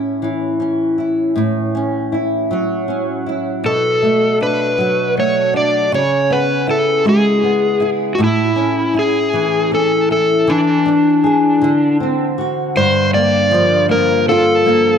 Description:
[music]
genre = pop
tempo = 53 BPM (dotted quarters)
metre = 6/8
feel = straight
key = F# minor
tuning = A4 = 440 Hz
[part]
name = flamenco guitar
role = accompaniment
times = 0.0-15.0 s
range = G2 to G#4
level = -16 LUFS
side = equal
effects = double-tracked left and right
[part]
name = overdriven slide guitar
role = melody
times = 3.7-15.0 s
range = D4 to D5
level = -14 LUFS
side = left 1 dB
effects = digital delay
[sound]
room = moderate lush hall reverb, RT60 1.7 s, small room ambience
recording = dark, warm production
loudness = -13 LUFS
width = side -7 dB against mid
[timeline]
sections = 0.0-12.8 A section; 12.8-15.0 B section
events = none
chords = 0.0 A; 1.4 F#m7/A; 3.7 Bm7; 5.9 C#m7; 8.2 A; 10.5 E7; 11.6 D7; 12.8 Gm7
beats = 0.23 | 1.37 2.51 | 3.65 4.79 | 5.93 7.07 | 8.21 9.34 | 10.48 11.62 | 12.75 13.89

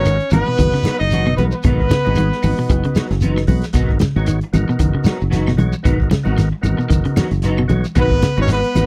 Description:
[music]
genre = afrobeat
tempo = 114 BPM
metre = 4/4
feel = swing 56% on 16ths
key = G# minor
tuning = A4 = 440 Hz
[part]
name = clear trumpet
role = melody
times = 0.0-3.1, 8.0-8.9 s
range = B4 to D#5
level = -23 LUFS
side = equal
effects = none
[part]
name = bright alto saxophone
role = second line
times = 0.0-3.1, 8.0-8.9 s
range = B3 to D#4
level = -28 LUFS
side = equal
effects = none
[part]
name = percussive tonewheel organ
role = accompaniment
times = 0.0-8.9 s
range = B3 to C#5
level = -30 LUFS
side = equal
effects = slow rotary speaker, overdrive
[part]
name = semi-hollow electric guitar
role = stabs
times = 0.0-8.7 s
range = F#3 to F#4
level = -28 LUFS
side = equal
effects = ensemble chorus
[part]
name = fingered electric bass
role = bass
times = 0.0-8.9 s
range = F#1 to B1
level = -21 LUFS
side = equal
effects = none
[part]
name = electric guitar at the edge of break-up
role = arpeggios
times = 0.1-8.7 s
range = B2 to D#3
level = -23 LUFS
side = equal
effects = none
[part]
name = vintage drum kit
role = drums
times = 0.1-8.9 s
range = hi-hat, kick drum, snare drum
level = -22 LUFS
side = equal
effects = none
[part]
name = claves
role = percussion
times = 0.1-8.9 s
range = none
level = -37 LUFS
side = equal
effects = none
[part]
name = shekere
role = percussion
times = 0.1-8.9 s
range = none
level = -23 LUFS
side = equal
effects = none
[part]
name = congas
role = percussion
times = 0.3-8.9 s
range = none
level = -24 LUFS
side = equal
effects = none
[sound]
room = little or no reverb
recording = dry, close 1970s-style studio recording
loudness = -17 LUFS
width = mono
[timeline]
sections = 0.0-8.9 A section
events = none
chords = 0.0 G#m7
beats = 0.07 0.60 1.12 | 1.65 2.17 2.70 3.23 | 3.75 4.28 4.81 5.33 | 5.86 6.39 6.92 7.45 | 7.97 8.50

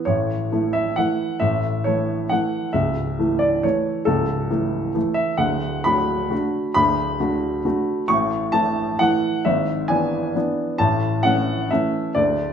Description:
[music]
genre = classical, piano waltz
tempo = 134 BPM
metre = 3/4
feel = uneven beats, rubato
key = A major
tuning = A4 = 440 Hz
[part]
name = warm upright piano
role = solo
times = 0.0-12.5 s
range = C#1 to C#6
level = -19 LUFS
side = equal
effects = none
[sound]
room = wet large studio reverb, RT60 1.3 s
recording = none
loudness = -19 LUFS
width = side -8 dB against mid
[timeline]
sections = 0.0-12.5 A section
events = none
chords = 0.1 A; 2.7 A/C#; 5.4 D6; 8.1 A; 9.5 E7/G#; 10.8 A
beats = | 0.06 0.51 0.97 | 1.41 1.85 2.31 | 2.74 3.18 3.64 | 4.07 4.51 4.96 | 5.39 5.86 6.32 | 6.76 7.19 7.65 | 8.09 8.53 9.00 | 9.45 9.89 10.35 | 10.80 11.24 11.70 | 12.15

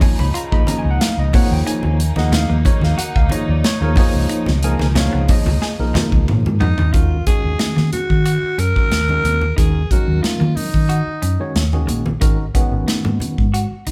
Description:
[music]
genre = electric jazz fusion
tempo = 91 BPM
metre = 4/4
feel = straight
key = Eb minor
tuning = A4 = 439 Hz
[part]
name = tine electric piano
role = accompaniment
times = 0.0-13.5 s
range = Eb3 to Cb6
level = -26 LUFS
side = equal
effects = none
[part]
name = warm studio string section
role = sustained chords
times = 0.0-6.9 s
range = Db3 to Eb4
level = -34 LUFS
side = equal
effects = none
[part]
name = clean electric guitar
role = stabs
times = 0.0-13.9 s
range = Bb3 to Ab4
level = -31 LUFS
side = equal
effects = none
[part]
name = modern studio drum kit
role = drums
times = 0.0-13.9 s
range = hi-hat, kick drum, snare drum, toms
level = -21 LUFS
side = equal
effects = none
[part]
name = congas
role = percussion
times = 0.0-13.4 s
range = none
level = -26 LUFS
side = equal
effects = none
[part]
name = hollow-body short-scale fingered electric bass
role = bass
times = 0.2-13.9 s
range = Ab1 to Eb3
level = -21 LUFS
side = equal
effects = none
[part]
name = growling alto saxophone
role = melody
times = 6.6-11.6 s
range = Eb4 to Bb4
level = -24 LUFS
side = equal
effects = none
[sound]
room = light reverb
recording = band playing live in one room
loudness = -17 LUFS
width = mono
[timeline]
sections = 0.0-6.9 A section; 6.9-13.9 B section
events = drum fill 5.6-6.9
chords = 0.0 Db9; 1.3 Ebm7; 4.0 Db9; 6.9 Ebm7; 12.2 Abm9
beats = 0.35 1.01 | 1.67 2.33 2.98 3.64 | 4.30 4.96 5.61 6.27 | 6.93 7.59 8.25 8.91 | 9.57 10.23 10.89 11.55 | 12.21 12.87 13.54

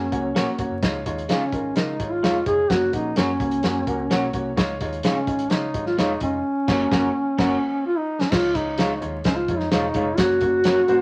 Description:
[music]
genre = uptempo 1960s-style soul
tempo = 128 BPM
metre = 4/4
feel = straight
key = Db major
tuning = A4 = 440 Hz
[part]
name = mellow duduk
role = melody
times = 0.0-11.0 s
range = Db4 to Ab4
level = -25 LUFS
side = equal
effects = none
[part]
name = warm upright piano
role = accompaniment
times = 0.0-11.0 s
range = Ab3 to Eb5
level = -30 LUFS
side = equal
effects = none
[part]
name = vintage muted fingered electric bass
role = bass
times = 0.0-11.0 s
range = Fb1 to Db3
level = -37 LUFS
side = equal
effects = none
[part]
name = warm soul drum kit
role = drums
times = 0.1-11.0 s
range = crash cymbal, hi-hat, kick drum, snare drum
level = -27 LUFS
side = equal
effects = none
[part]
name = electric guitar through a small old amp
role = stabs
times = 0.3-10.8 s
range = Ab3 to Db5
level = -28 LUFS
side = equal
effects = none
[sound]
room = moderate studio reverb, RT60 0.8 s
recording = vinyl crackle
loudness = -22 LUFS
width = mono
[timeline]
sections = 0.0-8.3 A section; 8.3-11.0 B section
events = band accent 6.4-8.3; drum fill 7.8-8.3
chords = 0.0 Gb; 0.8 Dbadd9; 2.7 Gb; 4.6 Dbadd9; 6.4 Gb; 8.3 Dbadd9; 10.2 Gb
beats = 0.36 | 0.83 1.29 1.76 2.23 | 2.70 3.17 3.64 4.11 | 4.58 5.04 5.51 5.98 | 6.45 6.91 7.38 7.85 | 8.32 8.78 9.25 9.72 | 10.18 10.65

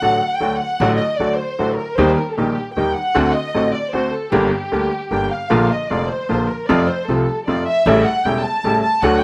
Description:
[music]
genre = tango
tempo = 153 BPM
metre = 3/4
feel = rubato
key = unclear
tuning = A4 = 440 Hz
[part]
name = warm studio violin section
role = second line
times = 0.0-9.2 s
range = G4 to A5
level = -23 LUFS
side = equal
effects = slapback echo
[part]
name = bright upright piano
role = accompaniment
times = 0.0-9.2 s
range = E1 to G4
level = -20 LUFS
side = equal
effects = none
[part]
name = bandoneon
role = stabs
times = 0.0-9.2 s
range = A3 to G4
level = -33 LUFS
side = equal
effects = none
[part]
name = upright bass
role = bass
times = 0.0-9.2 s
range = E1 to F2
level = -27 LUFS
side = equal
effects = none
[sound]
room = little or no reverb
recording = recorded outdoors, with no room sound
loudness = -18 LUFS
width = mono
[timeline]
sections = 0.0-5.5 A section; 5.5-9.2 A section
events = violin section solo 0.0-5.5, 5.5-9.2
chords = 0.0 D; 2.0 Eb; 3.2 D7; 4.3 Gm; 5.5 Bb; 6.7 F; 7.9 A7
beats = 0.01 0.41 | 0.80 1.20 1.59 | 1.98 2.37 2.77 | 3.15 3.54 3.94 | 4.33 4.72 5.11 | 5.51 5.90 6.29 | 6.69 7.08 7.47 | 7.86 8.25 8.64 | 9.03

